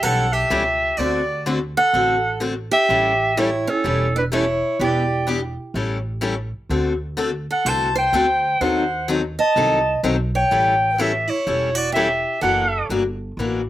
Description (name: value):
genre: acoustic string swing (jazz manouche)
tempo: 126 BPM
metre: 4/4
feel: swing 64% on 8ths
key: A mixolydian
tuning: A4 = 440 Hz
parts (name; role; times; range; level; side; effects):
- clear clarinet; melody; 0.0-12.9 s; A4 to A5; -19 LUFS; equal; slapback echo
- picked steel-string acoustic guitar; second line; 0.0-12.9 s; C#4 to D#5; -24 LUFS; right 4 dB; none
- picked steel-string acoustic guitar; accompaniment; 0.0-13.6 s; D3 to A4; -23 LUFS; left 4 dB; none
- upright bass; bass; 0.0-13.7 s; E1 to D#2; -27 LUFS; right 1 dB; none
room: little or no reverb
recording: recorded outdoors, with no room sound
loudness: -18 LUFS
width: side -14 dB against mid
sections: 0.0-13.7 A section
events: none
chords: 0.0 A7; 1.0 D7; 2.9 A7; 4.8 Em7; 5.8 A7; 6.7 D7; 8.6 D#dim7; 10.5 A7; 12.4 F#7alt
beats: 0.04 0.51 | 0.99 1.47 1.94 2.42 | 2.90 3.37 3.85 4.32 | 4.80 5.28 5.75 6.23 | 6.71 7.18 7.66 8.14 | 8.61 9.09 9.57 10.04 | 10.52 11.00 11.47 11.95 | 12.43 12.90 13.38